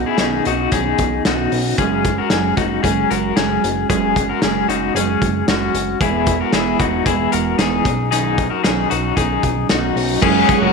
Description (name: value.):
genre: jangly indie pop.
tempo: 114 BPM.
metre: 4/4.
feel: straight.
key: unclear.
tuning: A4 = 440 Hz.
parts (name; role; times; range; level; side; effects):
mellow electric guitar; accompaniment; 0.0-10.7 s; B2 to F#4; -21 LUFS; right 13 dB; lush chorus.
electric guitar through a small old amp; arpeggios; 0.0-10.7 s; C#4 to A#4; -19 LUFS; left 12 dB; tremolo, slapback echo.
chorused synth bass; bass; 0.0-10.7 s; E1 to B1; -24 LUFS; equal; none.
loose indie drum kit; drums; 0.2-10.6 s; crash cymbal, hi-hat, kick drum, snare drum; -21 LUFS; equal; none.
string machine, violins; sustained chords; 10.2-10.7 s; G#4 to C#6; -21 LUFS; left 1 dB; ensemble chorus.
room: moderate echo chamber reverb, RT60 1.7 s, studio ambience.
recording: 1960s-style stereo with parts hard left and right.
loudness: -15 LUFS.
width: side -4 dB against mid.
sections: 0.0-10.2 A section.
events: none.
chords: 0.0 Badd9; 1.8 F#sus2; 6.0 E; 7.9 Badd9; 10.2 F#sus2.